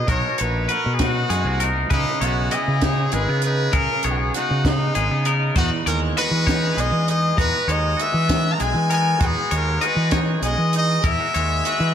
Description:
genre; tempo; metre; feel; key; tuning
math rock and midwest emo; 66 BPM (dotted quarters); 6/8; straight; E lydian; A4 = 436 Hz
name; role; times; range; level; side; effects
brilliant trumpet; melody; 0.0-11.9 s; D#4 to A#5; -23 LUFS; left 2 dB; none
twangy electric guitar; accompaniment; 0.0-11.9 s; E2 to G#4; -28 LUFS; right 8 dB; slapback echo
twangy electric guitar; arpeggios; 0.0-11.9 s; G#4 to A#5; -26 LUFS; left 6 dB; slapback echo, tape echo
fuzz fingered electric bass; bass; 0.1-11.9 s; G#1 to E3; -22 LUFS; equal; overdrive
compact cocktail drum kit; drums; 0.1-11.8 s; hi-hat, kick drum, snare drum; -24 LUFS; equal; none
room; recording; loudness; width
moderate lush hall reverb, RT60 2.1 s; big arena sound; -18 LUFS; side -9 dB against mid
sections
0.0-11.9 A section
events
none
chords
0.0 Bmaj9; 1.9 C#m9; 5.6 Emaj9

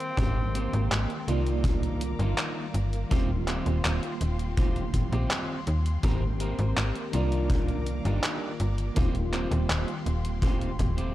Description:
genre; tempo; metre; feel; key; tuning
vaporwave; 82 BPM; 4/4; straight; Eb major; A4 = 440 Hz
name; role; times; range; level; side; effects
breathy tenor saxophone; melody; 0.0-0.9 s; C4; -37 LUFS; left 1 dB; vintage 12-bit sampler grit, tape echo
mellow tine electric piano; accompaniment; 0.0-11.1 s; Eb3 to D5; -34 LUFS; right 1 dB; medium stereo tremolo, lush chorus, analog delay
dark studio string section; sustained chords; 0.0-11.1 s; G4 to D6; -42 LUFS; left 2 dB; none
detuned 8-bit digital drum machine; drums; 0.0-11.1 s; handclaps, hi-hat; -33 LUFS; equal; gated reverb
electric guitar at the edge of break-up; riff; 0.2-11.1 s; Bb3 to Bb4; -37 LUFS; right 2 dB; lush chorus, vintage 12-bit sampler grit, analog delay
slap-like FM bass; bass; 0.2-11.1 s; Eb1 to Eb2; -28 LUFS; equal; none
kick drum; drums; 0.2-10.9 s; none; -28 LUFS; equal; none
room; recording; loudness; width
small room ambience; cassette tape; -25 LUFS; side -14 dB against mid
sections
0.0-11.1 A section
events
break 0.0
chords
0.2 Abmaj9; 1.3 Cm11; 3.1 Eb69; 6.0 Abmaj9; 7.1 Cm11; 9.0 Eb69

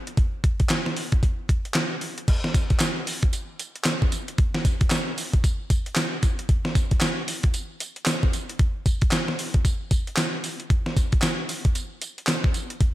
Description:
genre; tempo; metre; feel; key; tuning
R&B; 114 BPM; 4/4; swing 61% on 16ths; none; none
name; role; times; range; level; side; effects
gated 80s digital drum machine; drums; 0.1-12.9 s; crash cymbal, handclaps, hi-hat, kick drum, snare drum, tambourine; -22 LUFS; equal; gated reverb, gated reverb snare, overdrive
room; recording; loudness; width
light reverb; none; -22 LUFS; side -15 dB against mid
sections
0.0-2.3 A section; 2.3-12.9 B section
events
none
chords
none

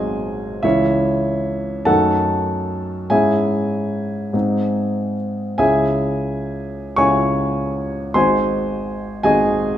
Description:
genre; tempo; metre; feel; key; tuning
classical, romantic nocturne for solo piano; 48 BPM (dotted quarters); 6/8; uneven beats, rubato; C# minor; A4 = 439 Hz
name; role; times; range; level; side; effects
warm grand piano; solo; 0.0-9.8 s; G#1 to C#6; -17 LUFS; equal; none
room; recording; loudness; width
wet recital hall reverb, RT60 1.4 s; minimal, uncompressed stereo recording; -17 LUFS; side -11 dB against mid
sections
0.0-9.8 A section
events
none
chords
0.0 G#7; 0.6 C#m; 1.9 D#dim/F#; 3.1 C#m/G#; 4.3 G#; 5.6 C#m; 8.1 G#7

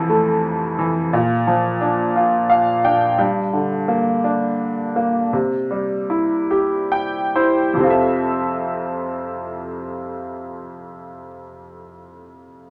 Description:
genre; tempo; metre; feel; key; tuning
folk; 43-58 BPM (dotted quarters); 6/8; straight; F major; A4 = 440 Hz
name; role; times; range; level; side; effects
bright upright piano; melody; 0.0-12.7 s; F2 to G5; -20 LUFS; equal; none
room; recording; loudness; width
wet studio reverb, RT60 0.6 s; none; -20 LUFS; mono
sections
0.0-7.8 A section; 7.8-12.7 B section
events
upright piano fill 2.2-3.2, 6.5-7.8; slowing down 3.2-7.8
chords
0.0 Fmaj7; 1.1 Bb; 3.2 Gm; 5.3 C; 7.8 Fmaj7

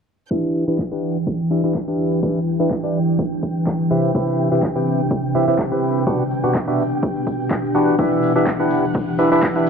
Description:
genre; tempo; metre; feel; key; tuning
piano house; 125 BPM; 4/4; swing 54% on 16ths; E minor; A4 = 443 Hz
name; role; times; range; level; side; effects
rich chamber violin section; sustained chords; 0.3-9.7 s; F#5 to G6; -33 LUFS; right 1 dB; sidechain pumping
percussive organ stab; riff; 0.3-9.7 s; B2 to G5; -19 LUFS; equal; wide subtle chorus, sidechain pumping, tape echo
electronic kick drum; drums; 0.3-9.5 s; none; -24 LUFS; equal; high-pass filter on kick
tambourine; percussion; 0.3-9.7 s; none; -61 LUFS; equal; none
deep dark ambient pad; texture; 1.0-9.7 s; B2 to B4; -21 LUFS; equal; chorus, built-in reverb, sidechain pumping
punchy analog drum machine; drums; 0.8-9.7 s; handclaps, hi-hat; -31 LUFS; equal; none
modern studio drum kit; drums; 8.0-9.7 s; hi-hat, snare drum, tambourine; -43 LUFS; left 1 dB; none
room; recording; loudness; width
light reverb, small room reverb; dry, gritty hardware recording, transformer saturation, low-pass filter; -17 LUFS; side -6 dB against mid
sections
0.3-9.7 A section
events
filter sweep on synth stab 0.3-9.7; filter sweep 0.3-9.7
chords
0.3 Em7; 3.9 Cmaj7; 6.1 Gmaj7/B; 8.0 Em7

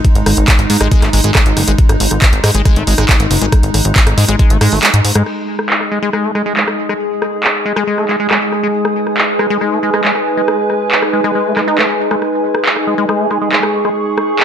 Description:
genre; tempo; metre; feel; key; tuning
psychedelic trance; 138 BPM; 4/4; straight; G# minor; A4 = 440 Hz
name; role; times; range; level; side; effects
evolving wavetable pad; sustained chords; 0.0-14.4 s; G#3 to B4; -19 LUFS; equal; chorus, built-in reverb, sidechain pumping
big-room dance drum kit; drums; 0.0-14.4 s; crash cymbal, handclaps, hi-hat, rim click; -16 LUFS; equal; low-pass filter on snare, low-pass filter on hats, low-pass filter on cymbals
electronic kick drum; drums; 0.0-4.5 s; none; -11 LUFS; equal; overdrive
plucky analog bass; bass; 0.2-5.2 s; F#1 to G#2; -13 LUFS; equal; none
liquid acid bass; riff; 0.7-13.9 s; G#3 to D#4; -19 LUFS; left 1 dB; chorus, auto-pan, sidechain pumping, digital delay
warbly tape-like pad; texture; 6.3-14.4 s; D#4 to D#6; -19 LUFS; right 1 dB; chorus, built-in reverb, sidechain pumping
room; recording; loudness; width
moderate digital room reverb, RT60 1.4 s, digital ambience; none; -11 LUFS; side -8 dB against mid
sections
0.0-5.3 A section; 5.3-14.4 B section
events
kick drops out 4.8-5.3; filter sweep on acid bass 5.3-14.4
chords
0.0 G#5

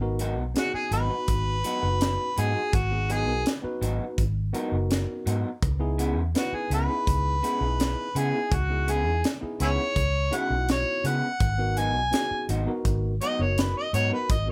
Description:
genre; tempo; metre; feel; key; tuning
straight-eighth soul blues; 83 BPM; 4/4; straight; G# minor; A4 = 440 Hz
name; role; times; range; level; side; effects
tine electric piano; accompaniment; 0.0-14.5 s; B3 to B4; -36 LUFS; equal; none
vintage muted fingered electric bass; bass; 0.0-14.5 s; F#1 to C#3; -29 LUFS; equal; none
electric guitar through a small old amp; stabs; 0.2-14.2 s; G#2 to E4; -34 LUFS; equal; none
tight funk drum kit; drums; 0.2-14.5 s; hi-hat, kick drum, snare drum; -31 LUFS; equal; none
mellow harmonica; melody; 0.6-14.5 s; E4 to G#5; -30 LUFS; equal; overdrive
room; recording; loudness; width
light reverb; none; -26 LUFS; mono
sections
0.0-14.5 A section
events
none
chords
0.0 G#m7; 5.6 C#m7; 11.4 G#m7

